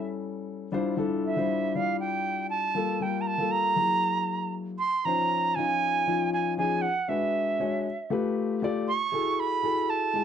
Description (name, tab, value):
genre	jazz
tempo	118 BPM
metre	4/4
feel	swing 54% on 16ths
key	unclear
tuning	A4 = 438 Hz
part	dark grand piano	accompaniment	0.0-10.2 s	F3 to D5	-29 LUFS	left 4 dB	none
part	bright reedy jazz flute	melody	1.3-10.2 s	E5 to Db6	-26 LUFS	right 4 dB	none
room	moderate club reverb, RT60 0.5 s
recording	none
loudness	-25 LUFS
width	side -8 dB against mid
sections	0.0-4.8 A section; 4.8-10.2 B section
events	none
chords	0.0 A7; 0.7 Dm11; 2.8 Gm9; 3.8 Gb9; 4.8 Dbmaj9; 6.8 Abm7b5; 7.9 G9; 8.9 Gbm9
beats	0.21 | 0.72 1.23 1.74 2.25 | 2.76 3.27 3.78 4.29 | 4.80 5.31 5.82 6.33 | 6.84 7.34 7.85 8.36 | 8.87 9.38 9.89